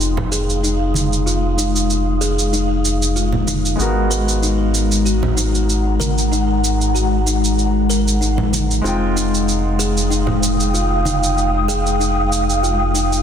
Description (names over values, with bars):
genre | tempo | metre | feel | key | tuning
sunset chillout | 95 BPM | 4/4 | swing 54% on 16ths | F minor | A4 = 440 Hz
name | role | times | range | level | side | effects
clear concert grand piano | accompaniment | 0.0-13.2 s | Ab3 to G5 | -28 LUFS | equal | auto-pan, low-pass filter, tape echo
ethereal airy pad | sustained chords | 0.0-13.2 s | Ab3 to Eb6 | -20 LUFS | left 1 dB | ensemble chorus, built-in reverb
round analog bass | bass | 0.0-13.2 s | F1 to Ab1 | -19 LUFS | equal | tube saturation
shaker | drums | 0.0-13.2 s | none | -23 LUFS | right 3 dB | soft clipping on snare
congas | percussion | 0.2-11.2 s | none | -25 LUFS | right 4 dB | none
buzzing kalimba | arpeggios | 0.3-13.2 s | Eb4 to Bb4 | -23 LUFS | left 4 dB | low-pass filter, tape echo
room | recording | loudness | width
light reverb, studio reverb | dense, heavily limited modern master | -15 LUFS | side -8 dB against mid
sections
0.0-13.2 A section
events
filter sweep on grand piano 0.0-13.2; filter sweep on ambient pad 0.0-13.2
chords
0.0 Fm9; 3.8 Abm9; 8.8 Fm9